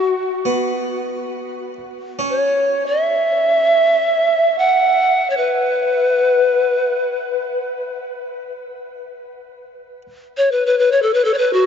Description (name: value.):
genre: world meditative, free-time meditation music.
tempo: free time.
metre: none.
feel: none.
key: unclear.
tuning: A4 = 440 Hz.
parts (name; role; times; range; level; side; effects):
breathy reedy pan flute; melody; 0.0-11.7 s; F#4 to F#5; -16 LUFS; equal; shimmer reverb, tape echo.
harpsichord; texture; 0.5-10.0 s; B3 to C#4; -25 LUFS; right 1 dB; shimmer reverb.
room: wet huge ambient reverb, RT60 7.6 s.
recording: dark, warm production, nothing above 7.6 kHz.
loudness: -15 LUFS.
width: side -7 dB against mid.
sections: 0.0-1.3 A section; 1.3-11.7 A section.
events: none.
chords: none.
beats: free time.